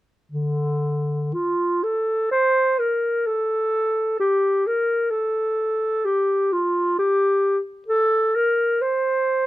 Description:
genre	classical, free, expressive piece for unaccompanied clarinet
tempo	64 BPM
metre	4/4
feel	rubato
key	unclear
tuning	A4 = 441 Hz
part	warm clarinet	solo	0.3-9.5 s	D3 to C5	-19 LUFS	equal	none
room	light reverb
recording	close, detailed microphones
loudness	-19 LUFS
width	side -16 dB against mid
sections	0.3-9.5 A section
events	none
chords	none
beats	| 0.33 1.35 2.31 3.25 | 4.19 5.11 6.04 6.97 | 7.88 8.81

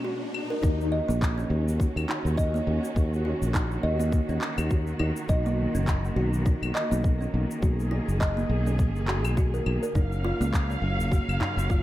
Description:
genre	organic downtempo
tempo	103 BPM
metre	4/4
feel	swing 57% on 16ths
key	Eb minor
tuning	A4 = 441 Hz
part	warm studio string section	sustained chords	0.0-11.8 s	Cb3 to F5	-33 LUFS	right 1 dB	sidechain pumping
part	kalimba	arpeggios	0.0-11.8 s	Bb3 to Eb5	-31 LUFS	right 1 dB	digital delay
part	riser	sound effects	0.0-0.6 s	none	-34 LUFS	left 4 dB	none
part	electronic claves, cabasa and handclaps	drums	0.3-11.8 s	none	-34 LUFS	left 1 dB	none
part	sustaining fretless electric bass	bass	0.6-11.8 s	F#1 to Eb2	-27 LUFS	equal	none
part	electronic kick drum	drums	0.6-11.8 s	none	-24 LUFS	equal	none
part	udu	percussion	11.0-11.5 s	none	-34 LUFS	left 2 dB	none
room	light reverb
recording	none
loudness	-24 LUFS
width	side -15 dB against mid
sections	0.6-11.8 A section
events	riser 0.0-0.6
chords	0.0 Abm7; 0.6 Ebm7; 5.3 Bmaj7; 10.0 Gbmaj7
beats	0.05 | 0.63 1.21 1.80 2.38 | 2.96 3.54 4.13 4.71 | 5.29 5.87 6.46 7.04 | 7.62 8.20 8.79 9.37 | 9.95 10.53 11.12 11.70

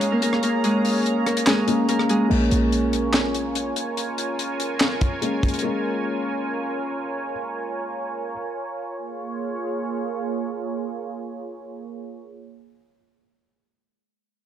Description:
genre	hip hop, trap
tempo	144 BPM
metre	4/4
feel	half-time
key	Bb minor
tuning	A4 = 441 Hz
part	Celtic harp	melody	0.0-5.1 s	Ab3 to F5	-22 LUFS	equal	tape echo
part	dark grand piano	accompaniment	0.0-8.3 s	Ab3 to Db4	-28 LUFS	left 3 dB	low-pass filter
part	sweeping resonant pad	sustained chords	0.0-12.2 s	Bb3 to Bb5	-28 LUFS	right 3 dB	chorus, low-pass filter
part	tight funk drum kit	drums	0.0-5.6 s	crash cymbal, handclaps, hi-hat, kick drum, rim click, snare drum	-24 LUFS	left 1 dB	none
part	short 808-style bass	bass	2.3-3.7 s	Bb1	-25 LUFS	equal	none
room	light reverb, small room ambience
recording	dark, warm production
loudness	-21 LUFS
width	side -10 dB against mid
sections	0.0-2.3 A section; 2.3-9.0 B section; 9.0-12.3 C section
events	kick muted 1.5-2.3; filter sweep 2.3-9.0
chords	0.0 Bbm7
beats	0.22 | 0.64 1.06 1.47 1.89 | 2.31 2.72 3.14 3.56 | 3.97 4.39 4.81 5.22 | 5.64 6.06 6.47 6.89 | 7.31 7.72 8.14 8.56 | 8.97 9.39 9.81 10.22 | 10.64 11.06 11.47 11.89

